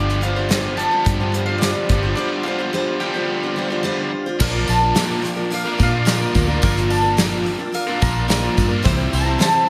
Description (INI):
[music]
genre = folk rock and heartland rock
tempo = 108 BPM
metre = 4/4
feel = straight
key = unclear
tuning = A4 = 444 Hz
[part]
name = mandolin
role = melody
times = 0.0-9.7 s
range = D5 to Bb5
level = -26 LUFS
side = equal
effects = none
[part]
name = picked steel-string acoustic guitar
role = accompaniment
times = 0.0-9.7 s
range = Bb2 to C5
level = -26 LUFS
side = equal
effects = none
[part]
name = tonewheel organ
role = sustained chords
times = 0.0-9.7 s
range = G4 to E6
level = -35 LUFS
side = equal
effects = none
[part]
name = raw garage guitar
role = riff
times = 0.0-9.7 s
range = G2 to C5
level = -27 LUFS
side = equal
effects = overdrive
[part]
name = vintage muted fingered electric bass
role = bass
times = 0.0-9.4 s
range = G1 to Bb2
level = -24 LUFS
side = equal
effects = none
[part]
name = soft brush drum kit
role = drums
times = 0.1-9.5 s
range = crash cymbal, hi-hat, kick drum, snare drum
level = -24 LUFS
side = equal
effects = none
[part]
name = tambourine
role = percussion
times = 4.4-9.5 s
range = none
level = -36 LUFS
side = equal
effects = none
[sound]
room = moderate lush hall reverb, RT60 1.8 s, studio ambience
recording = big arena sound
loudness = -19 LUFS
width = mono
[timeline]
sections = 0.0-4.4 A section; 4.4-9.7 B section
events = break 2.2-4.4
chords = 0.0 G7sus4; 4.4 Bb; 8.8 C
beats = 0.50 1.06 1.61 | 2.17 2.73 3.29 3.85 | 4.41 4.96 5.52 6.07 | 6.63 7.18 7.74 8.29 | 8.85 9.40